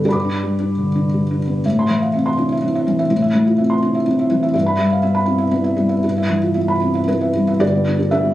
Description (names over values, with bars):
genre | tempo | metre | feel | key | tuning
neoclassical minimalist piano | 108-127 BPM | 3/4 | rubato | A minor | A4 = 440 Hz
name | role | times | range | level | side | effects
felt-muted upright piano | solo | 0.0-8.3 s | G1 to D6 | -15 LUFS | equal | none
room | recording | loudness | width
light reverb | recorded on a phone in the room, club reverb | -15 LUFS | side -14 dB against mid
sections
0.0-1.6 A section; 1.6-7.6 B section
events
none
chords
0.0 G; 1.6 Am; 4.5 Em/G; 7.6 G